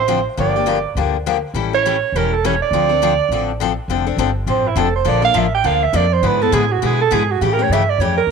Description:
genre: acoustic string swing (jazz manouche)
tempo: 205 BPM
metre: 4/4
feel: swing 58% on 8ths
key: D minor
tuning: A4 = 440 Hz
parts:
  - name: dark soprano saxophone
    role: melody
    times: 0.0-8.3 s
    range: E4 to G5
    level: -17 LUFS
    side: right 10 dB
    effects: slapback echo
  - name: upright bass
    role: bass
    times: 0.0-8.3 s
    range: E1 to B2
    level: -21 LUFS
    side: equal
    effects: none
  - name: picked steel-string acoustic guitar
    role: accompaniment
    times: 0.1-8.2 s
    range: C#3 to A4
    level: -20 LUFS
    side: left 13 dB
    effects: none
room: moderate spring reverb, RT60 1.7 s, small room ambience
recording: 1960s-style stereo with parts hard left and right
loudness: -14 LUFS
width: side -5 dB against mid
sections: 0.0-3.9 A section; 3.9-8.3 B section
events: soprano saxophone solo 3.9-8.3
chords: 0.4 Gm7; 1.5 A7; 2.7 Dm7; 5.1 Bbmaj7; 6.2 E7/G#; 7.4 A7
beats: 0.08 | 0.38 0.67 0.96 1.25 | 1.55 1.84 2.13 2.43 | 2.72 3.02 3.31 3.60 | 3.89 4.19 4.48 4.77 | 5.07 5.36 5.65 5.95 | 6.24 6.53 6.82 7.12 | 7.41 7.70 8.00 8.29

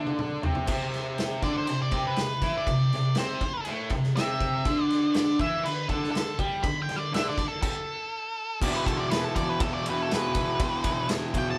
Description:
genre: garage rock duo or trio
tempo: 121 BPM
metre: 4/4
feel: straight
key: E minor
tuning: A4 = 442 Hz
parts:
  - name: fuzz guitar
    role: riff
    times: 0.0-11.6 s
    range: E2 to G4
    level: -30 LUFS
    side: equal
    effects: distortion
  - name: raw garage drum kit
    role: drums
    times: 0.1-11.5 s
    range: crash cymbal, kick drum, ride cymbal, snare drum, toms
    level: -33 LUFS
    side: equal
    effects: none
  - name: octave-fuzz lead guitar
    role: melody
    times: 1.4-11.6 s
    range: A4 to B5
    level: -33 LUFS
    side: equal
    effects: distortion
room: wet studio reverb, RT60 0.6 s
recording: band playing live in one room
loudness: -27 LUFS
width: mono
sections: 0.7-8.6 A section; 8.6-11.6 B section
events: drum fill 0.0-0.7; stop 7.6-8.6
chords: 0.0 Amadd11 (rootless); 4.7 D5; 8.6 E5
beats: 0.19 | 0.68 1.18 1.68 2.18 | 2.67 3.17 3.67 4.16 | 4.66 5.15 5.65 6.15 | 6.64 7.14 7.63 8.13 | 8.62 9.11 9.61 10.10 | 10.59 11.09 11.58

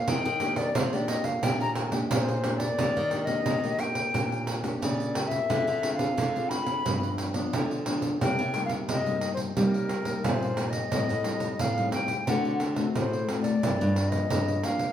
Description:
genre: samba and choro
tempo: 88 BPM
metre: 4/4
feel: straight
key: Eb major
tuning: A4 = 439 Hz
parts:
  - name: mellow silver concert flute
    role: melody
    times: 0.0-14.9 s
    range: Bb4 to Cb6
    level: -30 LUFS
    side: left 2 dB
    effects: none
  - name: nylon-string guitar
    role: accompaniment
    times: 0.0-14.9 s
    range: G2 to Ab4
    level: -32 LUFS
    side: left 2 dB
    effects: none
  - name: nylon-string guitar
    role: bass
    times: 0.1-14.6 s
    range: G2 to G3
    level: -31 LUFS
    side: right 1 dB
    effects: none
  - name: pandeiro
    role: percussion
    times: 0.1-14.9 s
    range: none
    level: -30 LUFS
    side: right 2 dB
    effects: none
room: wet large studio reverb, RT60 0.9 s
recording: band playing live in one room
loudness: -25 LUFS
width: side -10 dB against mid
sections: 0.0-2.8 A section; 2.8-14.9 B section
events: flute solo 0.0-2.8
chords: 0.0 Ebmaj7; 5.5 Dm7b5; 6.9 G7; 8.2 Cm7; 10.9 Am7b5; 12.3 D7; 13.6 Gm7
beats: | 0.08 0.75 1.43 2.11 | 2.79 3.46 4.14 4.82 | 5.50 6.18 6.86 7.53 | 8.21 8.89 9.57 10.25 | 10.92 11.60 12.28 12.96 | 13.63 14.31

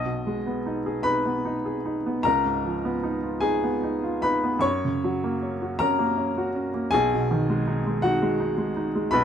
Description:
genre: classical, romantic nocturne for solo piano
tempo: 48-55 BPM (dotted quarters)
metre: 6/8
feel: rubato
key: unclear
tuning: A4 = 439 Hz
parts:
  - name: clear baby grand piano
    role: solo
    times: 0.0-9.2 s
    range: B1 to D#6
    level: -22 LUFS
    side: equal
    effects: none
room: light reverb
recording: dark, warm production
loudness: -23 LUFS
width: side -8 dB against mid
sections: 0.0-9.2 A section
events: none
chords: 0.0 G#m/B; 2.2 C#9; 4.6 F#; 6.9 G#m/B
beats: 1.04 | 2.23 3.42 | 4.64 5.79 | 6.94 8.05 | 9.15

